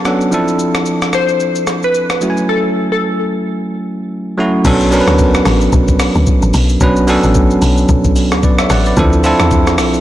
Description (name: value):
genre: amapiano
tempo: 111 BPM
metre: 4/4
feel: swing 58% on 16ths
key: unclear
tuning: A4 = 440 Hz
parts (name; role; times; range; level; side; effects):
- bell-like tine electric piano; accompaniment; 0.0-10.0 s; F3 to A5; -14 LUFS; right 1 dB; low-pass filter
- breakbeat sampler-style drum kit; drums; 0.1-10.0 s; crash cymbal, hi-hat, kick drum, rim click, shaker; -16 LUFS; left 1 dB; vintage 12-bit sampler grit
- glassy wavetable pluck; melody; 1.1-4.3 s; A4 to C5; -16 LUFS; left 2 dB; chorus, low-pass filter, ping-pong delay
- woody log drum bass; bass; 4.6-10.0 s; A1 to E2; -15 LUFS; left 1 dB; none
room: light reverb, digital ambience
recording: blown-out, overdriven recording, overdrive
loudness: -10 LUFS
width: side -13 dB against mid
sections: 0.0-4.6 A section; 4.6-10.0 B section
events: tine electric piano fill 0.0-0.3; filter sweep 0.0-4.6; break 2.5-4.6; drop 4.6-10.0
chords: 0.3 Dm9; 2.2 F#m9; 4.6 Bm9; 9.0 Dm9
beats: | 0.32 0.86 1.41 1.95 | 2.49 3.03 3.57 4.11 | 4.65 5.19 5.73 6.27 | 6.81 7.35 7.89 8.43 | 8.97 9.51